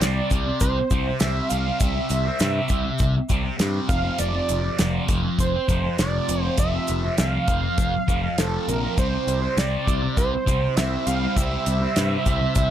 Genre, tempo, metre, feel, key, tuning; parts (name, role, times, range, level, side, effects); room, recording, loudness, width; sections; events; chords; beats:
psychedelic rock; 100 BPM; 4/4; straight; C major; A4 = 440 Hz
wide unison lead; melody; 0.0-12.7 s; A4 to F5; -27 LUFS; right 3 dB; slapback echo
thick fuzz guitar; riff; 0.0-12.7 s; F2 to C4; -26 LUFS; left 1 dB; distortion, phaser
modern bright picked electric bass; bass; 0.0-12.7 s; F1 to G2; -26 LUFS; equal
damped 70s drum kit; drums; 0.0-12.7 s; hi-hat, kick drum, snare drum; -23 LUFS; equal
egg shaker; percussion; 0.0-12.7 s; -36 LUFS; left 6 dB
muted studio string section; sustained chords; 9.0-12.7 s; G3 to C5; -33 LUFS; right 4 dB
light reverb; -20 LUFS; side -11 dB against mid
0.0-12.7 A section
0.0 C; 3.9 F5; 9.0 C
0.02 0.61 1.21 | 1.81 2.41 3.00 3.60 | 4.20 4.80 5.39 5.99 | 6.59 7.19 7.79 8.38 | 8.98 9.58 10.18 10.77 | 11.37 11.97 12.57